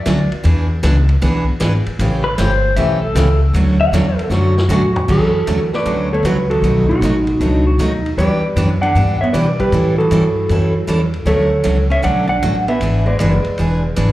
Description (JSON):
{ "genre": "country, western swing", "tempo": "155 BPM", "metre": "4/4", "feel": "swing 66% on 8ths", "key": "D major", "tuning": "A4 = 440 Hz", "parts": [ { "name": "pedal steel guitar", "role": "second line", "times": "0.0-5.1, 7.4-8.1 s", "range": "D4 to F#5", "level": "-20 LUFS", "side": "left 2 dB", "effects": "slapback echo" }, { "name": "upright bass", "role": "bass", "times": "0.0-14.1 s", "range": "E1 to B2", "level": "-17 LUFS", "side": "equal", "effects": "none" }, { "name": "picked steel-string acoustic guitar", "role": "accompaniment", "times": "0.1-14.1 s", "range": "B2 to A4", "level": "-19 LUFS", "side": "right 2 dB", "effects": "slapback echo" }, { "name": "vintage drum kit", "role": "drums", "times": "0.1-14.1 s", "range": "crash cymbal, hi-hat, kick drum, ride cymbal, snare drum, toms", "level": "-28 LUFS", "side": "left 1 dB", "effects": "none" }, { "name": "clean lap steel guitar", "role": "melody", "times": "5.1-14.1 s", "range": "D#4 to F#5", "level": "-18 LUFS", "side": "equal", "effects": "slapback echo" }, { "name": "hollow-body jazz guitar", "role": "second line", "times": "5.1-14.1 s", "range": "B2 to D4", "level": "-22 LUFS", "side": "right 2 dB", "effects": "slapback echo" } ], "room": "light reverb, studio reverb", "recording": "live gig heard through the venue's PA, club reverb", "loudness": "-13 LUFS", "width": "side -15 dB against mid", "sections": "0.0-5.1 A section; 5.1-14.1 B section", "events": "pedal steel guitar solo 0.0-5.1; drum fill 4.3-5.1", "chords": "0.4 E7; 2.0 A9; 3.5 Dmaj7; 5.1 Dmaj9; 6.6 B7; 8.2 Em7; 9.7 A7; 11.3 Dmaj7; 12.8 E7", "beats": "0.06 | 0.45 0.83 1.22 1.60 | 1.99 2.38 2.76 3.15 | 3.53 3.92 4.30 4.69 | 5.08 5.46 5.85 6.24 | 6.62 7.01 7.40 7.78 | 8.17 8.56 8.94 9.33 | 9.72 10.10 10.49 10.88 | 11.26 11.65 12.04 12.42 | 12.81 13.20 13.58 13.97" }